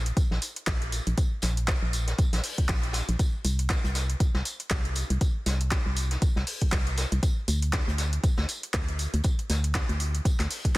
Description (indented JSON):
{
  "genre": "deep house",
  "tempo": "119 BPM",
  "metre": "4/4",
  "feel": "swing 57% on 16ths",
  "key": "unclear",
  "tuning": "A4 = 439 Hz",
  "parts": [
    { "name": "organ-like FM bass", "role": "bass", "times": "0.0-10.8 s", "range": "Bb1 to D2", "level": "-27 LUFS", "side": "equal", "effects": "sidechain pumping" },
    { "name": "deep house drum kit", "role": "drums", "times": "0.1-10.8 s", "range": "handclaps, hi-hat", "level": "-32 LUFS", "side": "equal", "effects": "small room ambience" },
    { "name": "electronic kick drum", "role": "drums", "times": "0.2-10.8 s", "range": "none", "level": "-25 LUFS", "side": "equal", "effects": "small room ambience" },
    { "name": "vintage brush drum kit", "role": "drums", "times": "0.2-10.6 s", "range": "hi-hat, snare drum, tambourine", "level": "-37 LUFS", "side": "left 1 dB", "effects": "sidechain pumping on hats, high-pass filter on hats, small room ambience, soft clipping on snare, high-pass filter on snare, sidechain pumping on perc, high-pass filter on perc, high-pass filter on room" }
  ],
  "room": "small room ambience",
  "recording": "dense, heavily limited modern master",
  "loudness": "-24 LUFS",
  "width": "side -20 dB against mid",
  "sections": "0.0-10.8 A section",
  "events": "none",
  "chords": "none"
}